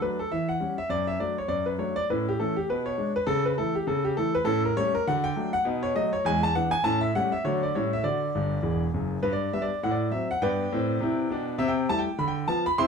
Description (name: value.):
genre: jazz, stride piano.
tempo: 202 BPM.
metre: 4/4.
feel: swing 61% on 8ths.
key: D major, G major from 9.2 s.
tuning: A4 = 440 Hz.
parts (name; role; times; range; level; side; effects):
clear concert grand piano; solo; 0.0-12.9 s; E1 to C6; -24 LUFS; equal; none.
room: wet club reverb, RT60 0.6 s.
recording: heard from further back in the room.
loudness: -24 LUFS.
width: side -6 dB against mid.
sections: 0.0-9.2 A section; 9.2-12.9 B section.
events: grand piano fill 8.3-9.2.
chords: 0.3 C#dim/E; 0.9 D/F#; 2.1 A; 2.7 G#dim/B; 3.3 A/C#; 4.5 A7; 5.1 D; 5.7 B7; 6.2 E7; 6.8 A7; 7.4 D; 7.7 A7; 8.0 D; 9.2 G; 9.8 F#dim/A; 10.4 G; 11.6 C6; 12.2 Bdim/D.